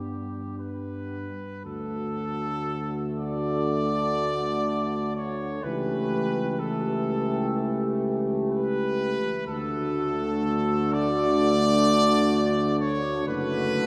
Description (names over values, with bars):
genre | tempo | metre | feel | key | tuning
classical, hymn-like piece for brass band | 62 BPM | 4/4 | uneven beats, rubato | D major | A4 = 440 Hz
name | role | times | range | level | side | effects
warm trumpet section | melody | 0.0-13.9 s | G4 to D5 | -31 LUFS | equal | none
mellow French horn section | second line | 0.0-13.9 s | B3 to G4 | -34 LUFS | equal | none
dark trombone section | accompaniment | 0.0-13.9 s | A3 to D4 | -33 LUFS | equal | none
warm trombone | accompaniment | 0.0-13.9 s | D3 to G3 | -36 LUFS | equal | none
mellow tuba | bass | 0.0-13.9 s | F#1 to G2 | -33 LUFS | equal | none
room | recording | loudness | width
wet church reverb, RT60 3.3 s | recorded in a church or concert hall | -26 LUFS | mono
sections
0.0-1.7 A section; 1.7-13.9 B section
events
none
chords
0.0 G; 1.7 D; 5.6 A7/C#; 9.5 D; 13.3 D/F#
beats
0.59 | 1.65 2.68 3.70 4.67 | 5.64 6.59 7.55 8.51 | 9.47 10.44 11.41 12.34 | 13.27